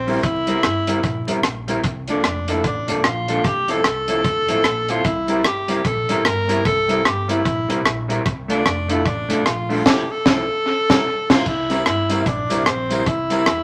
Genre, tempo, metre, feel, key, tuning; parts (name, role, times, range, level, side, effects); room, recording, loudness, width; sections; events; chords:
ska; 150 BPM; 4/4; swing 60% on 8ths; C mixolydian; A4 = 440 Hz
clear tenor saxophone; melody; 0.0-13.6 s; C4 to Bb4; -24 LUFS; equal
upright bass; bass; 0.0-13.6 s; F1 to E2; -31 LUFS; equal
electric guitar at the edge of break-up; accompaniment; 0.1-13.4 s; F3 to Bb4; -26 LUFS; equal
deep reggae drum kit; drums; 0.1-13.6 s; crash cymbal, hi-hat, kick drum, rim click, snare drum; -22 LUFS; equal; tape echo
tambourine; percussion; 11.7-13.4 s; -43 LUFS; equal
wet club reverb, RT60 0.8 s; vinyl crackle; -19 LUFS; mono
0.0-11.5 A section; 11.5-13.6 A section
band accent 9.9-11.5
0.0 C7; 1.8 Bbmaj7; 3.4 Fmaj7/C; 5.0 C7; 8.3 Bbmaj7; 9.9 Fmaj7/C; 10.7 C7